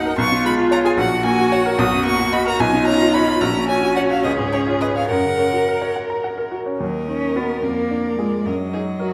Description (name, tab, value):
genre	quick classical-period movement for piano quartet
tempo	69-76 BPM (dotted quarters)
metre	6/8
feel	rubato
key	F# major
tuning	A4 = 442 Hz
part	clear violin	melody	0.0-9.1 s	C#5 to D#6	-26 LUFS	equal	none
part	rich cello	second line	0.0-9.1 s	Gb3 to A#4	-25 LUFS	equal	none
part	clear baby grand piano	accompaniment	0.0-9.1 s	A#1 to A#5	-23 LUFS	equal	none
part	clear viola	accompaniment	0.0-9.1 s	D#4 to A#4	-26 LUFS	equal	none
room	wet scoring stage reverb, RT60 1.9 s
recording	none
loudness	-19 LUFS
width	mono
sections	0.0-6.8 A section; 6.8-9.1 B section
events	none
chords	0.2 C#7/B; 1.0 F#/A#; 1.8 Bmaj7; 2.6 C#7/B; 3.4 F#/A#; 4.2 C#7; 5.1 F#; 6.8 Ebm; 7.6 Ddim/F; 8.5 Ebm/Gb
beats	| 0.19 0.98 | 1.79 2.60 | 3.41 4.24 | 5.10 5.96 | 6.81 7.64 | 8.46